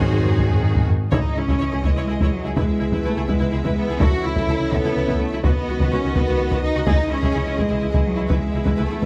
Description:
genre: cinematic, epic orchestral film score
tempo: 83 BPM (dotted quarters)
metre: 6/8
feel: straight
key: C# minor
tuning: A4 = 440 Hz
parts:
  - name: warm symphonic violin section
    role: melody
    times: 0.0-9.1 s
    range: C5 to E5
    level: -38 LUFS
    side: equal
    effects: none
  - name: clear symphonic violin section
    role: second line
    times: 0.0-9.1 s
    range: E4 to C#5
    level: -34 LUFS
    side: equal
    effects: none
  - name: clear symphonic viola section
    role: accompaniment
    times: 0.0-9.1 s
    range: Eb3 to F#4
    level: -35 LUFS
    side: equal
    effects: none
  - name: dark trombone section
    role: sustained chords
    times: 0.0-9.1 s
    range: D#3 to C#4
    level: -33 LUFS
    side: equal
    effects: none
  - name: mellow French horn section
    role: sustained chords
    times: 0.0-9.1 s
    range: Ab3 to E5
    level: -32 LUFS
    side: equal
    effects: none
  - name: rich studio double bass section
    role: bass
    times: 0.0-9.1 s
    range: Ab1 to C#2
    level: -27 LUFS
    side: equal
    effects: none
  - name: rich symphonic cello section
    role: bass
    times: 0.0-9.1 s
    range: F#3 to Ab4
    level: -27 LUFS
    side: equal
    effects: none
  - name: taiko ensemble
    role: drums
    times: 0.0-9.1 s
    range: none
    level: -24 LUFS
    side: equal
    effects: none
room: light reverb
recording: none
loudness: -20 LUFS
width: mono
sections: 0.0-1.1 A section; 1.1-9.1 B section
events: none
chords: 0.0 Ab7; 1.1 C#madd9; 2.6 E/C#; 4.0 A/C#; 5.4 B/C#; 6.9 C#madd9; 8.3 E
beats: 0.38 | 1.12 1.84 | 2.57 3.29 | 4.00 4.72 | 5.44 6.16 | 6.87 7.58 | 8.30 9.02

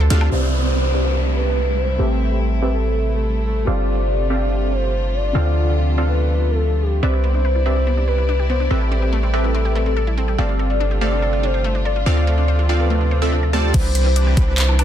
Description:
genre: future bass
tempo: 143 BPM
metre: 4/4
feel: half-time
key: C major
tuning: A4 = 440 Hz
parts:
  - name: soft octave-layered synth lead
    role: melody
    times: 0.0-14.8 s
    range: G4 to D5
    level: -25 LUFS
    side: left 1 dB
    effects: chorus, phaser, sidechain pumping, tape echo
  - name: wide unison pluck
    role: arpeggios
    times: 0.0-0.2, 7.0-14.8 s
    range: A3 to C5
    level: -29 LUFS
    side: left 2 dB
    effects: auto-pan, sidechain pumping, tape echo
  - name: warm 808-style bass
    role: bass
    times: 0.0-14.8 s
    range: G1 to D2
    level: -18 LUFS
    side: equal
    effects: sidechain pumping
  - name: supersaw stab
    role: riff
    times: 0.1-14.8 s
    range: E3 to A5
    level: -24 LUFS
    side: right 1 dB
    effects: sidechain pumping, low-pass filter, tape echo
  - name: big-room dance drum kit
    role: drums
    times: 0.1-0.3, 13.7-14.8 s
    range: crash cymbal, handclaps, hi-hat, woodblock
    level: -25 LUFS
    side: left 1 dB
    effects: none
  - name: felt-muted upright piano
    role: accompaniment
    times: 0.3-7.0 s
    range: C3 to D5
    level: -29 LUFS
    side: left 3 dB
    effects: sidechain pumping, tape echo
  - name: warm chamber string section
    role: sustained chords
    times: 0.3-14.8 s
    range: C3 to D5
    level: -30 LUFS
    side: right 1 dB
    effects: sidechain pumping
  - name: downlifter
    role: sound effects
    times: 0.3-3.7 s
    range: none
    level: -27 LUFS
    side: right 3 dB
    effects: none
  - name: electronic kick drum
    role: drums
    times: 13.7-14.5 s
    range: none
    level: -17 LUFS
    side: equal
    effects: overdrive
room: light reverb, digital ambience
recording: dense, heavily limited modern master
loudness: -16 LUFS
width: side -10 dB against mid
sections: 0.3-13.7 A section; 13.7-14.8 B section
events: filter sweep on supersaw synth 0.3-13.7; drop 13.7-14.8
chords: 0.3 Cmaj9; 2.0 Am9; 3.7 G9sus4; 5.3 Dm7; 7.0 Cmaj9; 8.7 Am9; 10.4 G9sus4; 12.1 Dm7; 13.7 Cmaj9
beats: | 0.32 0.73 1.15 1.57 | 1.99 2.41 2.83 3.25 | 3.67 4.09 4.51 4.93 | 5.35 5.77 6.19 6.61 | 7.03 7.45 7.87 8.29 | 8.71 9.13 9.55 9.96 | 10.38 10.80 11.22 11.64 | 12.06 12.48 12.90 13.32 | 13.74 14.16 14.58

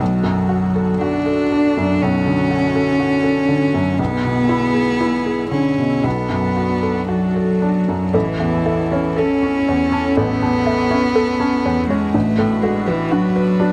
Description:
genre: neoclassical piano and strings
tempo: 59 BPM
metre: 4/4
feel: uneven beats, rubato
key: unclear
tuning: A4 = 440 Hz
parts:
  - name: warm cello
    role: second line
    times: 0.0-13.7 s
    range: E3 to D4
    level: -20 LUFS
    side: equal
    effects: none
  - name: felt-muted upright piano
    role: accompaniment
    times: 0.0-13.7 s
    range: A1 to B4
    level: -22 LUFS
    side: equal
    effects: none
  - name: rich chamber string section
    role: sustained chords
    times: 0.0-13.7 s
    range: D3 to B4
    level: -30 LUFS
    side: equal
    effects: none
  - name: hollow square pluck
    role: arpeggios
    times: 8.1-13.7 s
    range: D4 to A5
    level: -26 LUFS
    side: equal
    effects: chorus
room: light reverb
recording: dry, close 1970s-style studio recording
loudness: -18 LUFS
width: mono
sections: 0.0-8.1 A section; 8.1-13.7 A section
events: none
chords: 0.0 Bm7; 4.0 E7/B; 6.0 Bm7; 8.1 A; 12.1 D6/A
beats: | 0.01 1.02 2.02 3.00 | 3.99 5.00 6.05 7.10 | 8.15 9.18 10.18 11.16 | 12.15 13.12

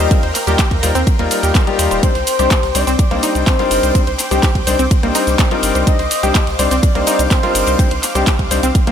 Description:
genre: progressive house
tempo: 125 BPM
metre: 4/4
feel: straight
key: C minor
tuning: A4 = 439 Hz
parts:
  - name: expressive synth lead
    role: melody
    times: 0.0-7.9 s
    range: C5 to Eb5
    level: -22 LUFS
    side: equal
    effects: lush chorus, dub echo
  - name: supersaw pad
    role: sustained chords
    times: 0.0-8.9 s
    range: Bb4 to D6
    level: -25 LUFS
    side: right 2 dB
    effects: sidechain pumping
  - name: wide unison pluck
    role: arpeggios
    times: 0.0-8.9 s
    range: Bb3 to C6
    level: -21 LUFS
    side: right 1 dB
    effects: sidechain pumping, dub echo
  - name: bright concert grand piano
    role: stabs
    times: 0.0-8.9 s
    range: G3 to C5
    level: -20 LUFS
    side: left 6 dB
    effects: sidechain pumping, dub echo
  - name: round analog bass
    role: bass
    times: 0.0-8.9 s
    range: Eb1 to Eb2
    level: -20 LUFS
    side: equal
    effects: sidechain pumping
  - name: electronic kick drum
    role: drums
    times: 0.1-8.8 s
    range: none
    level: -14 LUFS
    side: equal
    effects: none
  - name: huge arena drum kit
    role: drums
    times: 0.1-8.9 s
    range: hi-hat, ride cymbal, snare drum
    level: -29 LUFS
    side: left 3 dB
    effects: none
  - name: pop drum kit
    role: drums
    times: 0.1-8.9 s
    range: handclaps, hi-hat, shaker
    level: -21 LUFS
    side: equal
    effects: none
room: light reverb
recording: none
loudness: -12 LUFS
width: side -9 dB against mid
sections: 0.0-8.9 A section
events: none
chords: 0.0 Ebadd9; 2.0 Cmadd9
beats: | 0.11 0.59 1.07 1.55 | 2.03 2.51 2.99 3.47 | 3.95 4.43 4.91 5.39 | 5.87 6.35 6.83 7.31 | 7.79 8.27 8.75

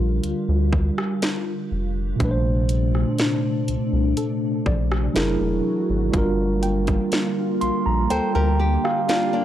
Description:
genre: contemporary R&B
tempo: 61 BPM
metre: 4/4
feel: straight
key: G minor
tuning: A4 = 440 Hz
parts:
  - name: mellow tine electric piano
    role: accompaniment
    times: 0.0-9.4 s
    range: Bb2 to C6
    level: -24 LUFS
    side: right 2 dB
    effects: medium stereo tremolo
  - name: glassy FM pad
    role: sustained chords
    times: 0.0-9.4 s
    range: C3 to G4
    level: -27 LUFS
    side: left 2 dB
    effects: ensemble chorus, built-in reverb, phaser, sidechain pumping
  - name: round analog bass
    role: bass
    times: 0.0-8.8 s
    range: E1 to D2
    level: -22 LUFS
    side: equal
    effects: none
  - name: soft round pluck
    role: texture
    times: 0.0-9.4 s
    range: A4 to G5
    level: -36 LUFS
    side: equal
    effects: chorus, analog delay
  - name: trap drum kit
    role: drums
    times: 0.2-9.3 s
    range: hi-hat, kick drum, rim click, snare drum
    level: -25 LUFS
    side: equal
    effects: none
  - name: flamenco guitar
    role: arpeggios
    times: 8.1-9.4 s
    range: Bb3 to C5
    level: -26 LUFS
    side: left 3 dB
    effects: none
room: digital ambience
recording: dry, gritty hardware recording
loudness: -19 LUFS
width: side -12 dB against mid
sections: 0.0-9.4 A section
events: tine electric piano fill 7.1-9.4; kick muted 8.1-9.4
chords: 0.0 Gm7; 2.2 Bbmaj9; 5.2 F#9; 6.1 Gm7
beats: 0.23 1.22 | 2.20 3.19 4.17 5.15 | 6.14 7.12 8.10 9.09

